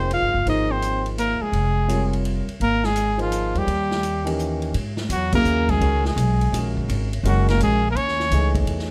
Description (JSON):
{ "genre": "modal jazz", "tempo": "168 BPM", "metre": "3/4", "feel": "swing 65% on 8ths", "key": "F minor", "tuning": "A4 = 441 Hz", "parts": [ { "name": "breathy trumpet", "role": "melody", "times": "0.0-8.5 s", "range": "F4 to F5", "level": "-26 LUFS", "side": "equal", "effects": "none" }, { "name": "mellow bass clarinet", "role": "second line", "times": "0.0-8.5 s", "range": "F3 to F4", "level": "-29 LUFS", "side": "equal", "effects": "none" }, { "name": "warm concert grand piano", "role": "accompaniment", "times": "0.0-8.9 s", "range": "C3 to Db5", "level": "-30 LUFS", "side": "equal", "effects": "none" }, { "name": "upright bass", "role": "bass", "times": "0.0-8.9 s", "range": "F1 to G#2", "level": "-25 LUFS", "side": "equal", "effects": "none" }, { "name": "swinging big-band drum kit", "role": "drums", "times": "0.1-8.9 s", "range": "crash cymbal, hi-hat, kick drum, ride cymbal, snare drum", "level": "-34 LUFS", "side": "equal", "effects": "none" } ], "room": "little or no reverb", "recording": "none", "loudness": "-22 LUFS", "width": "mono", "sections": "0.0-4.7 A section; 4.7-8.9 B section", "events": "band accent 5.3", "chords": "0.0 Fm9; 3.7 Eb7b9; 4.7 G#9sus4" }